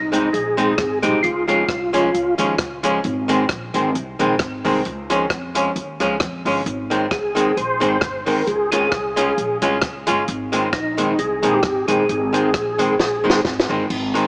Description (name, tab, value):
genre	ska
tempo	133 BPM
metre	4/4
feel	swing 54% on 8ths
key	Ab major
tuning	A4 = 440 Hz
part	percussive tonewheel organ	melody	0.0-2.3, 7.1-13.4 s	Eb4 to C5	-23 LUFS	equal	chorus vibrato, slow rotary speaker, tape echo
part	upright bass	bass	0.0-14.3 s	G1 to F2	-30 LUFS	equal	none
part	archtop guitar, miked and amplified	accompaniment	0.1-14.3 s	Eb3 to F4	-23 LUFS	equal	tape echo
part	compact cocktail drum kit	drums	0.1-14.2 s	crash cymbal, hi-hat, kick drum, rim click, snare drum	-27 LUFS	equal	none
room	moderate echo chamber reverb, RT60 1.9 s, small room ambience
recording	small speaker sound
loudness	-20 LUFS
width	mono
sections	0.0-13.9 A section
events	drum fill 13.0-13.9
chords	0.0 Ab; 1.2 Db; 3.0 Ab; 4.8 Db; 6.7 Ab; 8.5 Db; 10.3 Ab